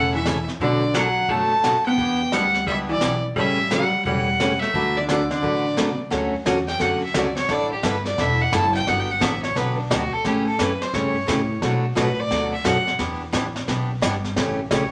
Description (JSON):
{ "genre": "country, western swing", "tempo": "174 BPM", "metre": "4/4", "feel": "swing 65% on 8ths", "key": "D major", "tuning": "A4 = 440 Hz", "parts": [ { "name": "clear fiddle", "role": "melody", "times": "0.0-14.9 s", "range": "D4 to A5", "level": "-26 LUFS", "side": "equal", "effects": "none" }, { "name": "vintage hollow-body jazz guitar", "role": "second line", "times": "0.0-6.0 s", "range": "D3 to B3", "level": "-27 LUFS", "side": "equal", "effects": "none" }, { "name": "picked steel-string acoustic guitar", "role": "accompaniment", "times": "0.0-14.8 s", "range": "B2 to B4", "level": "-27 LUFS", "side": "equal", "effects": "none" }, { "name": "upright bass", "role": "bass", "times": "0.0-14.9 s", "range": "E1 to B2", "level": "-31 LUFS", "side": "equal", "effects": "none" }, { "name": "vintage brush drum kit", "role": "drums", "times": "0.3-14.9 s", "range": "brushed snare drum, hi-hat, kick drum, snare drum", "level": "-30 LUFS", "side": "equal", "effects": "none" } ], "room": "wet club reverb, RT60 0.8 s", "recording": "none", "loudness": "-22 LUFS", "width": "mono", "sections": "0.0-6.1 A section; 6.1-14.9 B section", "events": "fiddle solo 6.1-14.9", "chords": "0.0 A; 0.6 Bm7; 2.0 Em7; 3.4 A7; 4.7 D6; 6.1 Dmaj7; 7.5 A7sus4; 8.9 Gmaj7; 10.2 A7; 11.6 Bm7; 13.0 Em7; 14.4 A7" }